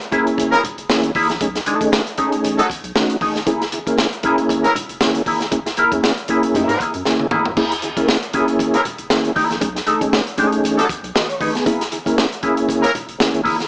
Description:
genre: funk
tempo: 117 BPM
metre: 4/4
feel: swing 56% on 16ths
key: unclear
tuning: A4 = 439 Hz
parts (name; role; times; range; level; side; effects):
- mellow electric guitar; accompaniment; 0.0-13.6 s; A3 to A#4; -20 LUFS; left 1 dB; wah, spring reverb
- crunchy breakbeat drum kit; drums; 0.0-13.7 s; crash cymbal, hi-hat, kick drum, snare drum, toms; -21 LUFS; equal; none
- mellow tonewheel organ; stabs; 0.1-13.7 s; A3 to D#5; -18 LUFS; equal; chorus vibrato
- congas; percussion; 0.1-13.6 s; none; -34 LUFS; equal; none
- round analog bass; bass; 0.4-13.7 s; D#1 to G#2; -33 LUFS; equal; none
- warm horn section; second line; 0.5-12.9 s; E3 to A#4; -16 LUFS; equal; none
room: light reverb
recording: small speaker sound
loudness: -15 LUFS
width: side -29 dB against mid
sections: 0.0-13.7 A section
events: drum fill 7.1-7.6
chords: 0.0 F#9 (rootless); 1.4 B13; 3.5 F#9; 9.6 B13; 11.7 F#9

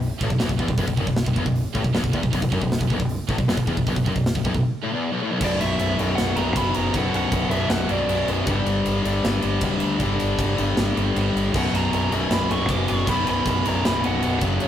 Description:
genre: heavy metal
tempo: 156 BPM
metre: 4/4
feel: straight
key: B minor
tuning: A4 = 440 Hz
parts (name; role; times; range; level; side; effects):
- distorted electric guitar; riff; 0.0-14.7 s; B1 to G3; -24 LUFS; left 4 dB; overdrive
- scooped high-gain guitar; riff; 0.0-14.7 s; B1 to G3; -28 LUFS; right 7 dB; distortion
- growling fingered electric bass; bass; 0.0-14.7 s; B0 to D2; -26 LUFS; right 1 dB; overdrive
- tight metal drum kit; drums; 0.0-14.7 s; crash cymbal, hi-hat, kick drum, ride cymbal, snare drum; -26 LUFS; equal; none
- dark smooth lead guitar; melody; 5.4-8.3, 11.6-14.7 s; C#5 to D6; -27 LUFS; right 2 dB; overdrive
room: moderate studio ambience, RT60 0.5 s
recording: rough rehearsal-room recording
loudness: -20 LUFS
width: side -10 dB against mid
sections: 0.0-5.4 A section; 5.4-14.7 B section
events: break 4.6-5.4; half time 5.4-14.7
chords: 0.0 B5; 8.5 G5; 11.5 B5

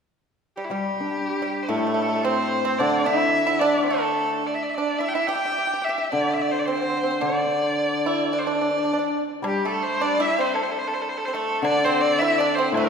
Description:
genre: chinese traditional, Chinese chamber ensemble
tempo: 109 BPM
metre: 2/4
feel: rubato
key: D shang mode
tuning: A4 = 440 Hz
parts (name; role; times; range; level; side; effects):
- bright erhu; melody; 0.6-12.9 s; E4 to G5; -24 LUFS; left 1 dB; none
- pipa; second line; 0.6-12.9 s; G3 to G4; -26 LUFS; right 2 dB; none
- hammered dulcimer; accompaniment; 0.7-12.9 s; A2 to D4; -26 LUFS; left 2 dB; none
- woodblock; percussion; 9.4-12.9 s; none; -36 LUFS; left 2 dB; none
room: wet concert hall reverb, RT60 2.4 s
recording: heard from further back in the room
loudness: -20 LUFS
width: side -6 dB against mid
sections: 0.6-9.4 A section; 9.4-12.9 B section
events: none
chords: none

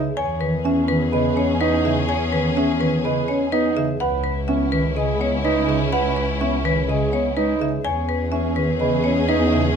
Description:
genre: classical, minimalist pattern music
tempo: 125 BPM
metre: 4/4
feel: straight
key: unclear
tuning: A4 = 441 Hz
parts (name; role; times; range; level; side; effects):
- marimba with hard mallets; melody; 0.0-9.8 s; B4 to G#5; -25 LUFS; left 5 dB; none
- chamber organ, stopped flute; accompaniment; 0.0-9.7 s; C#3 to C#4; -25 LUFS; equal; none
- warm studio double bass section; bass; 0.0-9.8 s; C#2 to E2; -24 LUFS; equal; none
- clear studio string section; sustained chords; 0.2-9.8 s; C#4 to G#4; -28 LUFS; left 2 dB; none
- dark baby grand piano; arpeggios; 0.2-9.6 s; C#4 to C#5; -24 LUFS; right 7 dB; none
room: moderate stone room reverb, RT60 1.0 s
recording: none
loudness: -18 LUFS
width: side -7 dB against mid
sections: 0.0-9.8 A section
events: none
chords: 0.2 E6; 4.0 C#m9; 7.8 E6

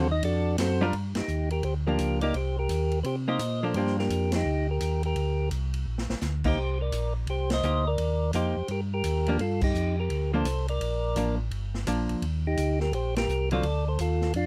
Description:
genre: soul jazz organ trio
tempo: 170 BPM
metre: 4/4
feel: swing 64% on 8ths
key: G minor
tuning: A4 = 442 Hz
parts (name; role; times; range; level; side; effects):
- percussive tonewheel organ; melody; 0.0-14.5 s; C4 to Eb5; -32 LUFS; equal; slow rotary speaker
- archtop guitar, miked and amplified; accompaniment; 0.0-4.3, 6.5-13.6 s; D3 to Bb4; -31 LUFS; equal; none
- mellow tonewheel organ; bass; 0.0-14.5 s; G1 to C3; -30 LUFS; equal; overdrive, chorus vibrato, slow rotary speaker
- swinging big-band drum kit; drums; 0.2-14.4 s; crash cymbal, hi-hat, kick drum, ride cymbal, snare drum; -39 LUFS; equal; none
room: little or no reverb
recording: close, detailed microphones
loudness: -28 LUFS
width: mono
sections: 0.9-14.5 A section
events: band accent 1.1, 4.3, 7.5, 9.6, 13.1; drum fill 5.9-6.2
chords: 0.0 D7#9; 0.9 Gm7; 2.3 Cm7; 3.8 Gm7; 12.2 Ebmaj7; 13.6 Dm7

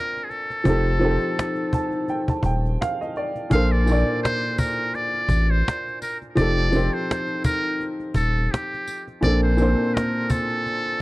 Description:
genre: lo-fi hip hop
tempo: 84 BPM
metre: 4/4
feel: swing 56% on 16ths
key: Bb major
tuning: A4 = 441 Hz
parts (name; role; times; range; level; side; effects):
- trumpet with metal mute; melody; 0.0-11.0 s; G4 to F5; -26 LUFS; equal; low-pass filter, tape echo
- clear upright piano; accompaniment; 0.0-11.0 s; Bb2 to A5; -24 LUFS; equal; low-pass filter
- cajon; drums; 0.2-10.9 s; none; -25 LUFS; equal; none
- saturated sub bass; bass; 0.7-9.8 s; Eb1 to Bb1; -21 LUFS; equal; none
- tambourine; percussion; 3.9-10.5 s; none; -43 LUFS; left 4 dB; none
room: light reverb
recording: cassette tape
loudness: -20 LUFS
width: side -19 dB against mid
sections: 0.0-11.0 A section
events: upright piano fill 1.4-3.5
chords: 0.0 Bbmaj9; 0.7 F7; 3.5 Bbmaj9; 6.4 F7; 9.2 Bbmaj9

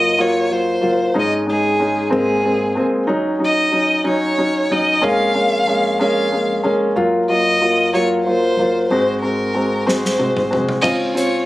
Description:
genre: six-eight pop ballad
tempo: 62 BPM (dotted quarters)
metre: 6/8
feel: straight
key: unclear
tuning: A4 = 439 Hz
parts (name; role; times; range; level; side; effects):
- warm violin; melody; 0.0-11.5 s; Ab4 to F5; -18 LUFS; equal; none
- warm concert grand piano; accompaniment; 0.0-11.4 s; Gb3 to Gb4; -17 LUFS; equal; none
- upright bass; bass; 0.0-11.5 s; Gb1 to Gb2; -33 LUFS; equal; none
- loose indie drum kit; drums; 9.9-11.3 s; crash cymbal, hi-hat, kick drum, snare drum, toms; -24 LUFS; equal; none
room: small room reverb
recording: recorded on a phone in the room, studio reverb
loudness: -15 LUFS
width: side -17 dB against mid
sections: 0.0-10.8 A section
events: drum fill 9.9-10.8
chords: 0.0 Gbmaj7; 1.2 Absus4; 2.1 Abadd9; 3.1 Ebm7; 5.0 Bbm7/F; 7.0 Gbmaj7; 8.9 Ab7; 10.8 Dbmaj7

